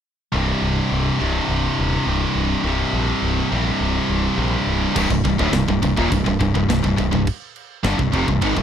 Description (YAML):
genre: heavy metal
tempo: 104 BPM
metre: 4/4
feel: straight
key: C minor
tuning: A4 = 440 Hz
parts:
  - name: scooped high-gain guitar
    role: riff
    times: 0.3-8.6 s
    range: C2 to Eb3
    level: -22 LUFS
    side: left 9 dB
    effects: distortion
  - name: scooped high-gain guitar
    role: riff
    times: 0.3-8.6 s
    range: C2 to Eb3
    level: -22 LUFS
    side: right 8 dB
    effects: distortion
  - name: growling fingered electric bass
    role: bass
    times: 0.3-8.6 s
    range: C1 to Bb1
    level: -24 LUFS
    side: equal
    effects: overdrive
  - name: biting overdriven guitar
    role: riff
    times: 5.0-8.6 s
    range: C2 to Eb3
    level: -26 LUFS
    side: left 1 dB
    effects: none
  - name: tight metal drum kit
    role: drums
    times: 5.0-8.6 s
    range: crash cymbal, kick drum, snare drum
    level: -26 LUFS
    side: equal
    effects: none
room: little or no reverb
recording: dry, close 1970s-style studio recording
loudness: -17 LUFS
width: side -8 dB against mid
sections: 0.3-5.0 A section; 5.0-8.6 B section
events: none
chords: 0.3 C5; 5.0 Cm